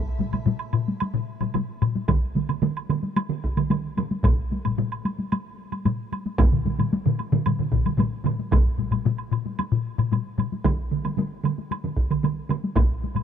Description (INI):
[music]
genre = japanese traditional, taiko drum ensemble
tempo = 112 BPM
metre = 4/4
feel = straight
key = none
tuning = none
[part]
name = taiko ensemble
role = percussion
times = 0.2-13.2 s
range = none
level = -28 LUFS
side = left 2 dB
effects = none
[part]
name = taiko ensemble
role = percussion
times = 0.2-13.2 s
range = none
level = -25 LUFS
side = left 6 dB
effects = none
[part]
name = woodblock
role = percussion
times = 0.3-13.2 s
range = none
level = -35 LUFS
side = right 6 dB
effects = none
[part]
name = taiko ensemble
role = percussion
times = 2.1-12.6 s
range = none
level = -26 LUFS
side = right 7 dB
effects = none
[part]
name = taiko ensemble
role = percussion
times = 2.1-12.9 s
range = none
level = -23 LUFS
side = right 1 dB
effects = none
[sound]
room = little or no reverb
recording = dark, warm production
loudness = -22 LUFS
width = side -8 dB against mid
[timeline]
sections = 0.0-13.2 A section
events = none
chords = none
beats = 0.47 1.01 1.55 | 2.09 2.63 3.17 3.71 | 4.24 4.78 5.32 5.85 | 6.39 6.92 7.46 7.99 | 8.52 9.06 9.59 10.12 | 10.65 11.18 11.71 12.23 | 12.76